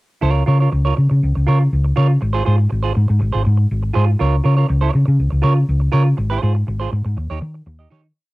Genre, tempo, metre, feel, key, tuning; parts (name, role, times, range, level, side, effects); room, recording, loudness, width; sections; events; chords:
disco; 121 BPM; 4/4; straight; A4 = 440 Hz
semi-hollow electric guitar; accompaniment; 0.2-8.1 s; Eb4 to Eb5; -22 LUFS; right 6 dB; cassette tape
hollow-body short-scale fingered electric bass; bass; 0.2-8.1 s; Ab1 to Eb3; -15 LUFS; equal
little or no reverb; home recording on cassette; -14 LUFS; side -20 dB against mid
0.2-8.2 breakdown
fade-out 6.2-8.2
0.2 Db6; 2.2 Ab6; 4.2 Db6; 6.2 Ab6; 7.2 Eb7